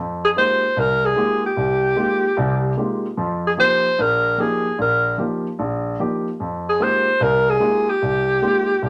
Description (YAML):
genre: jazz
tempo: 149 BPM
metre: 4/4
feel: swing 66% on 8ths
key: F minor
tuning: A4 = 440 Hz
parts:
  - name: warm grand piano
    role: accompaniment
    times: 0.0-8.9 s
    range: Bb1 to G4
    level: -25 LUFS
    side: equal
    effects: none
  - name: mellow alto saxophone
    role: melody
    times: 0.2-8.9 s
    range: G4 to C5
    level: -20 LUFS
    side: equal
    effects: none
room: wet studio ambience, RT60 0.5 s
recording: none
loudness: -19 LUFS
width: mono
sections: 0.0-8.9 A section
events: none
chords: 0.0 Fm11; 3.2 Eb; 6.4 Fm11